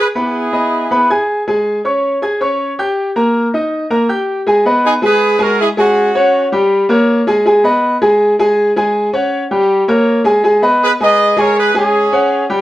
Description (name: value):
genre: latin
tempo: 161 BPM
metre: 4/4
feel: straight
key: G# minor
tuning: A4 = 440 Hz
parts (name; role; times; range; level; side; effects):
- bright horn section; melody; 0.0-1.3, 4.8-6.5, 10.8-12.5 s; C#4 to D#5; -14 LUFS; right 1 dB; none
- bright concert grand piano; accompaniment; 0.0-12.6 s; G3 to G#6; -12 LUFS; equal; none
room: moderate studio reverb, RT60 0.7 s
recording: worn, warbling old tape, cassette tape, warbly pitch drift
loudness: -11 LUFS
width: side -15 dB against mid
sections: 0.0-4.5 A section; 4.5-12.6 B section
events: none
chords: 0.0 G#m; 1.5 C#5; 3.0 D#; 4.5 G#m; 5.2 C#5; 6.0 F#sus2; 6.7 Gdim; 7.5 G#m; 8.2 N.C.; 8.9 F#sus2; 9.7 Gdim; 10.4 G#m; 11.2 C#5; 11.9 F#sus2